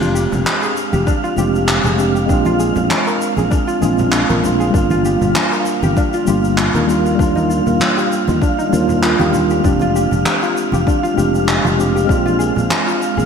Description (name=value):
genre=sunset chillout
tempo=98 BPM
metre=4/4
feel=swing 55% on 16ths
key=F dorian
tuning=A4 = 440 Hz
part: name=mellow tine electric piano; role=accompaniment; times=0.0-13.3 s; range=G3 to G4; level=-18 LUFS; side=equal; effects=auto-pan, digital delay, shimmer reverb
part: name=soft round pluck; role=arpeggios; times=0.0-13.2 s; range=D4 to Bb4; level=-22 LUFS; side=left 1 dB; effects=chorus, digital delay, shimmer reverb
part: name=sustaining fretless electric bass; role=bass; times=0.0-13.3 s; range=F1 to Eb2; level=-19 LUFS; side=equal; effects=ensemble chorus
part: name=shaker and handclaps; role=drums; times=0.0-13.3 s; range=none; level=-21 LUFS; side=equal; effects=gated reverb
part: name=congas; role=percussion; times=0.0-13.3 s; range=none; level=-26 LUFS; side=right 1 dB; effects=none
part: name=wind-like tuned noise texture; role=texture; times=0.2-13.3 s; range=F5 to F6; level=-24 LUFS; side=right 3 dB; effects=built-in reverb, lush chorus, shimmer reverb
part: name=electronic kick drum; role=drums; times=1.1-12.2 s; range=none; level=-17 LUFS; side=equal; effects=none
room=wet lush hall reverb, RT60 2.1 s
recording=bright 1980s-style digital production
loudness=-13 LUFS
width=side -6 dB against mid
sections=0.0-13.3 A section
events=none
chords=0.0 Fm69; 2.3 Bb9; 4.7 Gm7; 6.9 Ebmaj9; 9.6 Fm69; 12.1 Bb9